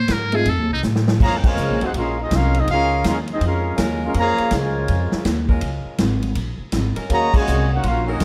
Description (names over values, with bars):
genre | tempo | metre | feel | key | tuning
jazz, big band swing | 163 BPM | 4/4 | swing 64% on 8ths | Bb minor | A4 = 440 Hz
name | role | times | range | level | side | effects
trumpet with metal mute | melody | 0.0-0.8 s | Eb4 to C5 | -26 LUFS | equal | none
upright bass | bass | 0.0-8.2 s | Ab1 to A2 | -24 LUFS | equal | none
swinging big-band drum kit | drums | 0.1-8.2 s | crash cymbal, hi-hat, kick drum, ride cymbal, snare drum | -25 LUFS | equal | none
warm grand piano | accompaniment | 0.3-0.5 s | A3 to Ab4 | -26 LUFS | equal | none
warm trumpet section | melody | 1.2-8.2 s | C4 to Bb5 | -25 LUFS | equal | none
dark trombone section | second line | 1.2-8.2 s | Bb2 to Gb4 | -27 LUFS | equal | none
bright saxophone section | sustained chords | 1.2-8.2 s | Gb3 to Bb4 | -33 LUFS | equal | none
room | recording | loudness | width
light reverb | dark, warm production, faint mains hum | -20 LUFS | mono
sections
0.0-1.2 A section; 1.2-8.2 B section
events
muted trumpet solo 0.0-1.2; drum fill 0.8-1.2; band accent 1.4, 7.3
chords
0.5 F7; 1.2 Bbm7; 7.1 Ebm7